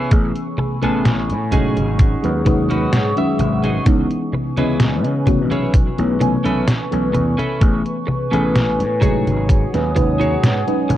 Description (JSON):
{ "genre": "vaporwave", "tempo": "64 BPM", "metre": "4/4", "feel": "straight", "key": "unclear", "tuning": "A4 = 442 Hz", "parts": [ { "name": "mellow FM electric piano", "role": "accompaniment", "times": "0.0-11.0 s", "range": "D#3 to G#5", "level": "-21 LUFS", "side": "equal", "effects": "phaser, analog chorus, tape echo" }, { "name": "warbly tape-like pad", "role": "sustained chords", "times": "0.0-11.0 s", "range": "A3 to D#6", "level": "-25 LUFS", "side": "left 1 dB", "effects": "chorus, built-in reverb, vintage 12-bit sampler grit" }, { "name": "clean electric guitar", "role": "riff", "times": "0.0-10.9 s", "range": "B3 to E5", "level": "-26 LUFS", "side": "right 2 dB", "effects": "analog chorus, tape echo" }, { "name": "gritty slap bass", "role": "bass", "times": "0.1-11.0 s", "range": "G#1 to C#3", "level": "-21 LUFS", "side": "equal", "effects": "overdrive, tube saturation" }, { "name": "detuned 8-bit digital drum machine", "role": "drums", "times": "0.1-11.0 s", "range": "congas, hi-hat, snare drum", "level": "-22 LUFS", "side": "equal", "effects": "none" }, { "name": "electronic kick drum", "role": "drums", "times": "0.1-10.2 s", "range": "none", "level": "-16 LUFS", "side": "equal", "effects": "none" } ], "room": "light reverb", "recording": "worn, warbling old tape, cassette tape, warbly pitch drift", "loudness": "-15 LUFS", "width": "side -13 dB against mid", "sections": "0.0-11.0 A section", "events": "clean electric guitar fill 2.5-3.9", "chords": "0.1 Amaj9; 1.5 G#7sus4; 3.9 C#m7; 5.7 B9sus4; 7.6 Amaj9; 9.0 G#7sus4", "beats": "| 0.12 1.05 1.99 2.93 | 3.87 4.80 5.74 6.68 | 7.62 8.55 9.49 10.43" }